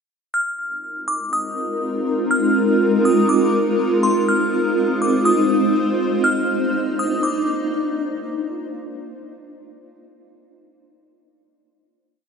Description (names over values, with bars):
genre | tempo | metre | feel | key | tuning
hip hop | 122 BPM | 4/4 | half-time | unclear | A4 = 440 Hz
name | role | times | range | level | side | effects
glassy synth bell | melody | 0.3-8.2 s | C6 to F6 | -23 LUFS | left 1 dB | chorus, ping-pong delay
granular cloud pad | sustained chords | 1.4-8.2 s | Ab3 to C5 | -18 LUFS | equal | built-in reverb
room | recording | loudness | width
moderate studio reverb, RT60 0.6 s | rough home demo mix, nothing above 10.8 kHz | -17 LUFS | side -6 dB against mid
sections
0.3-8.2 verse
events
none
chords
0.3 Ab69; 4.3 Fm7; 6.2 Cm11